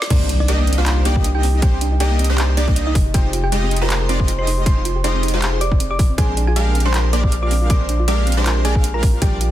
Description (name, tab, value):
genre	future bass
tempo	158 BPM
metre	4/4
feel	swing 55% on 16ths, half-time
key	C minor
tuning	A4 = 442 Hz
part	thumb-piano-like synth pluck	melody	0.0-9.5 s	D4 to D6	-25 LUFS	equal	chorus, sidechain pumping, ping-pong delay
part	trap drum kit	drums	0.0-9.5 s	crash cymbal, handclaps, hi-hat, snare drum	-26 LUFS	right 1 dB	studio reverb
part	airy dreamy lead	arpeggios	0.1-9.4 s	C5 to F5	-32 LUFS	equal	chorus, sidechain pumping, ping-pong delay
part	soft round pluck	arpeggios	0.1-9.5 s	Bb3 to Ab4	-28 LUFS	right 3 dB	chorus, sidechain pumping, ping-pong delay
part	supersaw stab	riff	0.1-9.4 s	G3 to F5	-25 LUFS	equal	sidechain pumping
part	long sustained 808-style bass	bass	0.1-9.5 s	F1 to C2	-18 LUFS	equal	sidechain pumping, high-pass filter
part	electronic kick drum	drums	0.1-9.3 s	none	-16 LUFS	equal	studio reverb
part	impact	sound effects	0.1-1.6 s	none	-29 LUFS	equal	none
room	little or no reverb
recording	dense, heavily limited modern master, high-pass filter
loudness	-15 LUFS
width	side -13 dB against mid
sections	0.1-9.5 A section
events	drop 0.1-9.5; impact 0.1-1.6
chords	0.1 Cm9; 3.0 Fm9; 6.2 Bb13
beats	| 0.10 0.48 0.86 1.24 | 1.62 2.00 2.38 2.76 | 3.14 3.52 3.90 4.28 | 4.66 5.04 5.42 5.80 | 6.18 6.56 6.94 7.32 | 7.70 8.08 8.46 8.84 | 9.22